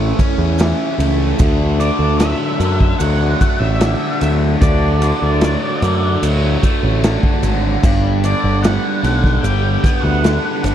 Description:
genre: psychedelic rock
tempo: 75 BPM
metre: 4/4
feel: straight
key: unclear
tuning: A4 = 439 Hz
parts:
  - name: ensemble organ-string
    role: sustained chords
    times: 0.0-10.7 s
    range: A3 to D5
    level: -27 LUFS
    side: right 4 dB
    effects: none
  - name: overdriven electric guitar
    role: riff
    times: 0.0-10.7 s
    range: G2 to C#4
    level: -20 LUFS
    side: left 1 dB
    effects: phaser
  - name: growling picked electric bass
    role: bass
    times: 0.0-10.7 s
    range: G1 to F#2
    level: -16 LUFS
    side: equal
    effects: overdrive
  - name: raw garage drum kit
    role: drums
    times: 0.2-10.7 s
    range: crash cymbal, kick drum, ride cymbal, snare drum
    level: -19 LUFS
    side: equal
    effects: none
  - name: maracas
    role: percussion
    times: 0.2-10.7 s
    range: none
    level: -34 LUFS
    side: right 12 dB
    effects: none
  - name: octave-fuzz lead guitar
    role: melody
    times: 1.8-10.7 s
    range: D5 to G5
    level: -22 LUFS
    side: right 1 dB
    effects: distortion, slapback echo
room: little or no reverb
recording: dry, close 1970s-style studio recording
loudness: -13 LUFS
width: side -10 dB against mid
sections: 0.0-10.7 A section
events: none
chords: 0.0 A; 1.4 D; 7.8 G

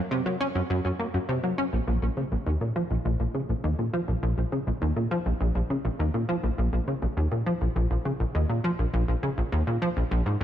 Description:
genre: ambient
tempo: 102 BPM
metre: 4/4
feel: straight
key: Bb minor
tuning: A4 = 440 Hz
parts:
  - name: plucky analog bass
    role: solo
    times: 0.1-10.4 s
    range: Bb1 to Db4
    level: -25 LUFS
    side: equal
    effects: wide subtle chorus, tape echo
room: moderate concert hall reverb, RT60 2.6 s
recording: none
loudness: -25 LUFS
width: side -11 dB against mid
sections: 0.0-1.7 A section; 1.7-10.4 B section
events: none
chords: none

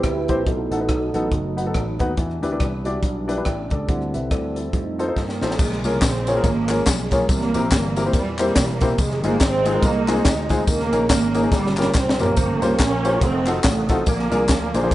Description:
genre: uptempo gospel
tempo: 142 BPM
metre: 4/4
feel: swing 59% on 8ths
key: unclear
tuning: A4 = 440 Hz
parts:
  - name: clear concert grand piano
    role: accompaniment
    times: 0.0-14.9 s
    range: G2 to G5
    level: -24 LUFS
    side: left 2 dB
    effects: none
  - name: mellow French horn section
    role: sustained chords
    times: 0.0-5.6 s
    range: C3 to A4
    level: -33 LUFS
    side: left 1 dB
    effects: none
  - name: percussive tonewheel organ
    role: sustained chords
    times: 0.0-5.0, 12.4-14.9 s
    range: F#3 to Eb6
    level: -28 LUFS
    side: right 3 dB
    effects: slow rotary speaker, chorus vibrato
  - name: vintage slap bass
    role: bass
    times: 0.0-14.9 s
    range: E1 to G2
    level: -27 LUFS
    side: equal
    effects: none
  - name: crisp fusion drum kit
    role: drums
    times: 0.0-14.9 s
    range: crash cymbal, hi-hat, kick drum, ride cymbal, rim click, snare drum, toms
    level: -22 LUFS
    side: equal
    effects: none
  - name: warm studio string section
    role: melody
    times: 5.2-14.9 s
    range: Bb2 to Eb4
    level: -23 LUFS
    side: right 2 dB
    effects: none
  - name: tambourine and handclaps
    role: percussion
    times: 5.6-14.9 s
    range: none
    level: -30 LUFS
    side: left 3 dB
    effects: none
room: light reverb, small room ambience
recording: rough home demo mix, nothing above 10.7 kHz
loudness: -18 LUFS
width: side -15 dB against mid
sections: 0.0-5.6 A section; 5.6-14.9 B section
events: tonewheel organ solo 0.0-5.6; drum fill 5.2-5.6, 11.5-12.4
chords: 0.5 B7; 2.2 Em7; 3.9 D7sus4; 4.7 F7; 5.6 Bbm7; 7.3 C7; 9.0 Fm7; 10.7 Eb7sus4; 11.5 Gm7b5; 13.2 F7b9; 14.1 Bb7

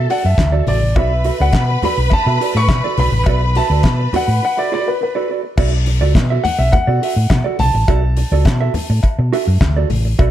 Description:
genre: disco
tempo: 104 BPM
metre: 4/4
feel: straight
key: unclear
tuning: A4 = 441 Hz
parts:
  - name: clear studio string section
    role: second line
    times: 0.0-5.3 s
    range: A4 to B5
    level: -23 LUFS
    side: left 1 dB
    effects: none
  - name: mellow electric guitar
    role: accompaniment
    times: 0.0-10.3 s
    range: F#4 to E5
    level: -22 LUFS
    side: right 8 dB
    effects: none
  - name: hollow-body short-scale fingered electric bass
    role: bass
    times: 0.0-10.3 s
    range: A1 to B2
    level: -15 LUFS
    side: equal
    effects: none
  - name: warm concert grand piano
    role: melody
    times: 0.1-9.9 s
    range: B4 to C#6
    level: -20 LUFS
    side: left 1 dB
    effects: none
  - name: damped 70s drum kit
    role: drums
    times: 0.1-10.3 s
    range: crash cymbal, handclaps, hi-hat, kick drum, snare drum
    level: -19 LUFS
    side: equal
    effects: none
  - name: congas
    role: percussion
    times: 0.4-10.3 s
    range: none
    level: -25 LUFS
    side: left 3 dB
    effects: none
  - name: cowbell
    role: percussion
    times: 0.4-10.3 s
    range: none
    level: -29 LUFS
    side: left 6 dB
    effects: none
room: studio reverb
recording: dark, warm production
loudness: -13 LUFS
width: side -12 dB against mid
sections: 0.0-5.6 A section; 5.6-10.3 B section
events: grand piano solo 0.0-5.6; break 4.4-5.6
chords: 0.0 Bm7

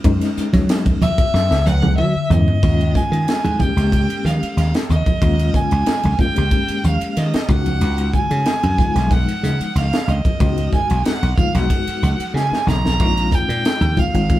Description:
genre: electric jazz fusion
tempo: 92 BPM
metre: 4/4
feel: straight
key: unclear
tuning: A4 = 442 Hz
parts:
  - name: mellow reed electric piano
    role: accompaniment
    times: 0.0-14.4 s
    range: F3 to G4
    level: -24 LUFS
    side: left 3 dB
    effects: fast tremolo
  - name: dry thumbed slap bass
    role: bass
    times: 0.0-14.4 s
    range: Ab1 to Gb3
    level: -18 LUFS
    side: equal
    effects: none
  - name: crisp fusion drum kit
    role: drums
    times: 0.0-14.4 s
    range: crash cymbal, hi-hat, kick drum, ride cymbal, snare drum, toms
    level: -20 LUFS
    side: equal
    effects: none
  - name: congas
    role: percussion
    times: 0.5-14.1 s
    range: none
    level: -24 LUFS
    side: right 1 dB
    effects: none
  - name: clear violin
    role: melody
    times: 1.0-14.4 s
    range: Eb5 to Bb5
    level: -22 LUFS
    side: right 2 dB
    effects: none
room: moderate studio reverb, RT60 0.7 s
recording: band playing live in one room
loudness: -15 LUFS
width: side -14 dB against mid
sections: 0.0-2.6 A section; 2.6-14.4 B section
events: drum fill 1.3-2.6, 12.4-13.0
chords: 0.0 Gb9sus4; 2.6 Eb9sus4; 7.5 Db9sus4; 13.0 Bb9sus4

